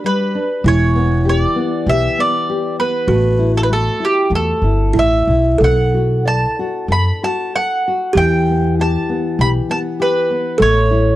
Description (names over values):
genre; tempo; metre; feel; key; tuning
fado-style ballad; 97 BPM; 4/4; uneven beats, rubato; unclear; A4 = 440 Hz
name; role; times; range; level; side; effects
buzzing kalimba; second line; 0.0-11.2 s; E4 to A4; -20 LUFS; right 3 dB; none
nylon-string guitar; accompaniment; 0.0-11.2 s; E3 to D5; -21 LUFS; left 4 dB; none
mandolin; melody; 0.1-11.2 s; G4 to B5; -18 LUFS; right 1 dB; none
upright bass; bass; 0.6-11.2 s; E1 to F#2; -16 LUFS; equal; none
room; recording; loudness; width
little or no reverb; dry, close 1970s-style studio recording; -13 LUFS; side -14 dB against mid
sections
0.0-11.2 A section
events
none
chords
0.0 G; 0.6 Em; 3.1 A5; 5.6 Bm7; 8.2 Em; 10.6 A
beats
0.04 | 0.65 1.26 1.87 2.48 | 3.08 3.69 4.31 4.95 | 5.60 6.25 6.89 7.53 | 8.15 8.77 9.38 9.99 | 10.60